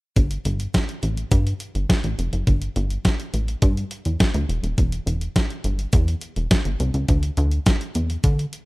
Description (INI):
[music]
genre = early-eighties boogie funk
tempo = 104 BPM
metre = 4/4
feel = straight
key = unclear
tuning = A4 = 439 Hz
[part]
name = plucky analog bass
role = bass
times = 0.2-8.5 s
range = Eb1 to D3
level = -22 LUFS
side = equal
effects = none
[part]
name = crisp 8-bit digital drum machine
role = drums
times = 0.2-8.7 s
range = hi-hat, kick drum, snare drum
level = -20 LUFS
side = equal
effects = none
[sound]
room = little or no reverb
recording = lossy compression artefacts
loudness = -20 LUFS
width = side -22 dB against mid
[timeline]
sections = 0.2-8.7 A section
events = none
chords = none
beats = | 0.16 0.74 1.32 1.89 | 2.47 3.05 3.62 4.20 | 4.78 5.36 5.93 6.51 | 7.09 7.66 8.24